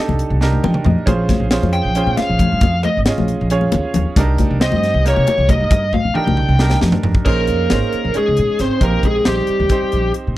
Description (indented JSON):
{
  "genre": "electric jazz fusion",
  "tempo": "271 BPM (eighths)",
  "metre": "7/8",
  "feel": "straight",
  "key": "Bb dorian",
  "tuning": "A4 = 440 Hz",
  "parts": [
    { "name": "bright baby grand piano", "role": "accompaniment", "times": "0.0-10.4 s", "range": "Bb3 to G5", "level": "-23 LUFS", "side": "right 4 dB", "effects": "none" },
    { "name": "upright bass", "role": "bass", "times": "0.1-10.4 s", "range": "Ab1 to C3", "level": "-18 LUFS", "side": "equal", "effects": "none" },
    { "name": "congas", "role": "percussion", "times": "0.1-7.3 s", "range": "none", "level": "-22 LUFS", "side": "left 5 dB", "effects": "none" },
    { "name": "crisp fusion drum kit", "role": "drums", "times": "0.2-10.2 s", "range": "crash cymbal, hi-hat, kick drum, snare drum, toms", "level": "-18 LUFS", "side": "equal", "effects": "none" },
    { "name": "bluesy overdriven lead guitar", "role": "melody", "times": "1.7-10.1 s", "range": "G4 to G5", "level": "-19 LUFS", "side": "left 1 dB", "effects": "distortion" },
    { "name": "dark trombone", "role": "second line", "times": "7.3-10.1 s", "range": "G3 to C4", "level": "-23 LUFS", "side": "right 4 dB", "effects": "none" }
  ],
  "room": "small room reverb",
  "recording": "dry, close 1970s-style studio recording",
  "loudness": "-13 LUFS",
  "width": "side -15 dB against mid",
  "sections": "0.0-7.3 A section; 7.3-10.4 B section",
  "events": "lead electric guitar solo 0.0-7.3; drum fill 0.4-1.1, 5.9-7.3; grand piano fill 0.4-1.1",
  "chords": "0.0 Cm9; 1.1 Bbm9; 4.2 Cm9; 7.3 Bbm11; 8.8 Bb13sus4",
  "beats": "0.19 0.41 0.64 0.86 | 1.08 1.30 1.52 1.74 1.96 2.18 2.40 | 2.62 2.85 3.07 3.29 3.51 3.73 3.95 | 4.17 4.39 4.61 4.83 5.05 5.28 5.50 | 5.72 5.94 6.16 6.38 6.60 6.82 7.05 | 7.27 7.49 7.71 7.93 8.15 8.38 8.60 | 8.82 9.04 9.26 9.48 9.71 9.93 10.15 | 10.37"
}